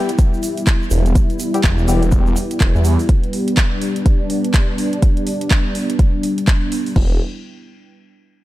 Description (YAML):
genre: bass house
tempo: 124 BPM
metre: 4/4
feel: swing 60% on 16ths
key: E minor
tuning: A4 = 440 Hz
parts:
  - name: dark analog pad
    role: sustained chords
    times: 0.0-7.2 s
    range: G3 to E4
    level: -21 LUFS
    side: equal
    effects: chorus, sidechain pumping
  - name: percussive organ stab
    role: stabs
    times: 0.0-2.0 s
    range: G3 to G4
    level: -24 LUFS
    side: left 4 dB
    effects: analog chorus, sidechain pumping, digital delay
  - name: house drum kit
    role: drums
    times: 0.1-7.1 s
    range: crash cymbal, handclaps, hi-hat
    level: -25 LUFS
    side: right 1 dB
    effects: none
  - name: egg shaker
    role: percussion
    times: 0.1-3.1 s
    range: none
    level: -34 LUFS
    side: right 5 dB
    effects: none
  - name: electronic kick drum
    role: drums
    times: 0.2-7.1 s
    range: none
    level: -15 LUFS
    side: equal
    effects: none
  - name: phased detuned saw bass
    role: bass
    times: 0.9-3.0, 7.0-7.2 s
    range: E1 to E2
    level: -16 LUFS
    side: equal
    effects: phaser, tube saturation, sidechain pumping
room: digital ambience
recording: dark, warm production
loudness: -14 LUFS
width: side -16 dB against mid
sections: 0.0-7.0 A section; 7.0-8.4 B section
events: none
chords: 0.0 Em